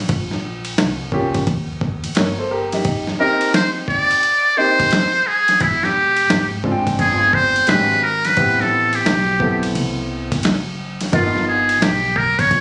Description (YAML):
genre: hip hop, jazz-hop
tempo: 87 BPM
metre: 4/4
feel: swing 65% on 16ths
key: unclear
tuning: A4 = 441 Hz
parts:
  - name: upright bass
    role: bass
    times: 0.0-12.6 s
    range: E1 to Eb2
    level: -27 LUFS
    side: equal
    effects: none
  - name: dusty soul sampler-style drum kit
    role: drums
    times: 0.1-12.6 s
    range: hi-hat, kick drum, ride cymbal, snare drum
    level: -24 LUFS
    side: equal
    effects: overdrive
  - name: clear upright piano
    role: accompaniment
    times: 1.1-12.1 s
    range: G#3 to G5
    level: -25 LUFS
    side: equal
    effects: none
  - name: trumpet with metal mute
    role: melody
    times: 3.2-12.6 s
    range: E4 to D5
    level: -18 LUFS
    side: equal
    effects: none
room: light reverb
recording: recorded on a phone in the room, club reverb, vinyl crackle, nothing above 10.6 kHz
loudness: -17 LUFS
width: mono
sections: 0.0-12.6 A section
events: muted trumpet solo 0.0-12.6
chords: 0.1 Bbmadd9; 1.5 Eb; 2.9 Abmaj9#11/Bb (rootless); 5.6 E7alt; 8.4 Am9; 11.1 G7alt